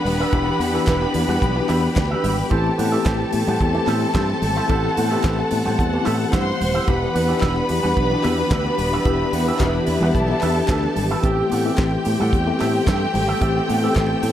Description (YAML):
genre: disco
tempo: 110 BPM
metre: 4/4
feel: straight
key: E minor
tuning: A4 = 439 Hz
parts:
  - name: rich studio violin section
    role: second line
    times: 0.0-14.3 s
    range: G4 to C6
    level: -24 LUFS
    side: left 1 dB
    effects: none
  - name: tine electric piano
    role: accompaniment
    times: 0.0-14.3 s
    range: E3 to A4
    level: -25 LUFS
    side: left 4 dB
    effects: overdrive, fast stereo tremolo
  - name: rich studio string section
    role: sustained chords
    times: 0.0-14.3 s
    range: E3 to F#5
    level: -26 LUFS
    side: equal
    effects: none
  - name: electric guitar with an envelope filter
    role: accompaniment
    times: 0.1-14.3 s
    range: C4 to F#5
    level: -28 LUFS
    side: right 4 dB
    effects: none
  - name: overdriven fingered electric bass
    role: bass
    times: 0.1-14.3 s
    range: D#1 to A2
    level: -23 LUFS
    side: right 1 dB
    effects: none
  - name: damped 70s drum kit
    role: drums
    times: 0.1-14.3 s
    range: handclaps, hi-hat, kick drum, snare drum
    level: -25 LUFS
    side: right 1 dB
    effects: none
  - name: congas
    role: percussion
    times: 0.1-14.3 s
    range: none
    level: -30 LUFS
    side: left 2 dB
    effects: none
  - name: group handclap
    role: percussion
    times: 0.9-14.1 s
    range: none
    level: -39 LUFS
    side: left 4 dB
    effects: none
room: light reverb, studio reverb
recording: none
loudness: -17 LUFS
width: side -11 dB against mid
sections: 0.0-14.3 A section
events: none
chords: 0.0 Em7; 2.5 Am7; 6.9 Em7; 11.2 Am7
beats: | 0.33 0.87 1.42 1.96 | 2.51 3.05 3.60 4.14 | 4.69 5.24 5.78 6.33 | 6.87 7.42 7.96 8.51 | 9.05 9.60 10.14 10.69 | 11.23 11.78 12.32 12.87 | 13.41 13.96